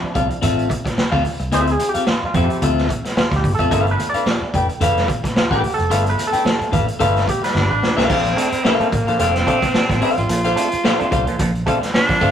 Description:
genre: funk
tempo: 110 BPM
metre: 4/4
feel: swing 56% on 16ths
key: unclear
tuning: A4 = 435 Hz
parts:
  - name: auto-wah clav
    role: stabs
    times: 0.0-12.3 s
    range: Bb2 to D5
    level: -23 LUFS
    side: right 1 dB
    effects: overdrive
  - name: vintage muted fingered electric bass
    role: bass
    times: 0.0-12.3 s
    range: F1 to F2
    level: -22 LUFS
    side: equal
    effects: none
  - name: clean electric guitar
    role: accompaniment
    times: 0.1-12.3 s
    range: C4 to G5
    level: -21 LUFS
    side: left 3 dB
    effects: none
  - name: raw garage drum kit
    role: drums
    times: 0.2-12.3 s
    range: crash cymbal, hi-hat, kick drum, snare drum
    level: -21 LUFS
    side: right 1 dB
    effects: none
  - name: congas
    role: percussion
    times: 0.4-8.0 s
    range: none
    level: -28 LUFS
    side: right 2 dB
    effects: none
  - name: breathy tenor saxophone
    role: melody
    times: 7.6-12.3 s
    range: Bb3 to F4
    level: -21 LUFS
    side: right 2 dB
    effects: slapback echo
room: moderate stone room reverb, RT60 1.2 s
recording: rough rehearsal-room recording, tube saturation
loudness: -15 LUFS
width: side -9 dB against mid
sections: 0.0-8.1 A section; 8.1-12.3 B section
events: clav solo 0.0-8.1; drum fill 7.5-8.1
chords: 0.0 Dm9; 3.7 G9; 8.1 Bbmaj9

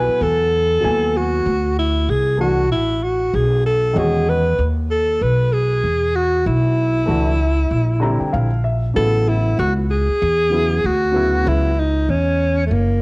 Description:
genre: hip hop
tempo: 96 BPM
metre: 4/4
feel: swing 57% on 16ths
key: unclear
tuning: A4 = 439 Hz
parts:
  - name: breathy alto saxophone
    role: melody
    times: 0.0-13.0 s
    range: A3 to B4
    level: -18 LUFS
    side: equal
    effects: cassette tape
  - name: dark grand piano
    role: accompaniment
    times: 0.0-11.7 s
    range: C#3 to A#5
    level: -23 LUFS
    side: equal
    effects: none
  - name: upright bass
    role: bass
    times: 0.0-13.0 s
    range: F#1 to E2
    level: -19 LUFS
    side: equal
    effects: none
room: moderate spring reverb, RT60 1.5 s, small room reverb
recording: home recording on cassette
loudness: -15 LUFS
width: side -29 dB against mid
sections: 0.0-13.0 A section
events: grand piano fill 7.7-9.0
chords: 0.0 Asus2; 1.5 D9; 4.0 Emaj7; 6.5 Bm9; 7.7 A#69; 9.0 Amaj9; 11.5 C#m11

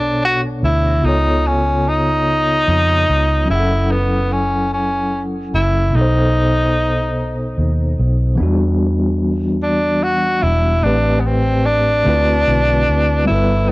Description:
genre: slow six-eight R&B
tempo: 49 BPM (dotted quarters)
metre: 6/8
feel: straight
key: B minor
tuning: A4 = 440 Hz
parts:
  - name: breathy tenor saxophone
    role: melody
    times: 0.0-13.7 s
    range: B3 to F#4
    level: -17 LUFS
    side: equal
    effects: none
  - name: overdriven tine electric piano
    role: accompaniment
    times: 0.0-13.7 s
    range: A2 to F#5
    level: -19 LUFS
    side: left 1 dB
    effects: medium tremolo
  - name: vintage muted fingered electric bass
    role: bass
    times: 0.0-13.7 s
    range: E1 to E#2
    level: -18 LUFS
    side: equal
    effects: transformer saturation
room: studio ambience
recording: dry, gritty hardware recording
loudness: -14 LUFS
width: side -21 dB against mid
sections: 0.0-13.7 A section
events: none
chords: 0.0 Bm7; 1.0 C#7b13; 3.5 F#m7; 5.9 B7b9; 8.4 Em9; 10.8 Am7; 12.1 D13

